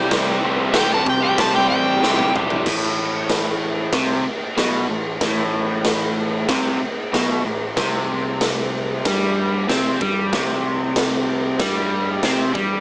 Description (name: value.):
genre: garage rock duo or trio.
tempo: 94 BPM.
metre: 4/4.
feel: straight.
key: A minor.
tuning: A4 = 439 Hz.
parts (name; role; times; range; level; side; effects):
overdriven slide guitar; melody; 0.0-2.3 s; G5 to A5; -19 LUFS; equal; none.
crunchy overdriven guitar; riff; 0.0-12.8 s; A2 to G4; -21 LUFS; equal; none.
growling picked electric bass; bass; 0.0-12.8 s; A1 to C3; -28 LUFS; equal; overdrive.
raw garage drum kit; drums; 0.1-12.7 s; crash cymbal, kick drum, snare drum, toms; -21 LUFS; equal; none.
room: light reverb.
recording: small speaker sound.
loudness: -17 LUFS.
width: side -26 dB against mid.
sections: 0.0-2.7 A section; 2.7-12.8 B section.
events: drum fill 2.0-2.7.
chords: 0.0 C; 2.7 Am; 7.8 C5.